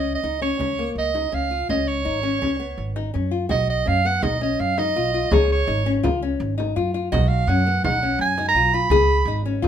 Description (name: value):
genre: contemporary instrumental, chamber music in an uneven meter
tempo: 166 BPM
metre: 5/4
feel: straight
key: Db mixolydian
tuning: A4 = 440 Hz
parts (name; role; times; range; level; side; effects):
- bright soprano saxophone; melody; 0.0-9.5 s; Db5 to Cb6; -22 LUFS; right 4 dB; none
- nylon-string guitar; arpeggios; 0.0-9.7 s; Bb3 to Ab4; -24 LUFS; left 6 dB; none
- upright bass; bass; 0.0-9.7 s; Ab1 to Gb2; -24 LUFS; right 1 dB; none
- frame drum; percussion; 0.2-9.7 s; none; -28 LUFS; right 2 dB; none
room: moderate studio reverb, RT60 0.6 s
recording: minimal, uncompressed stereo recording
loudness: -19 LUFS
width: side -9 dB against mid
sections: 0.0-3.5 A section; 3.5-9.7 B section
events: none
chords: 0.0 Db69; 1.7 Db7(no3); 3.5 Cb; 5.3 Db; 7.1 Cb; 8.9 Db7(no3)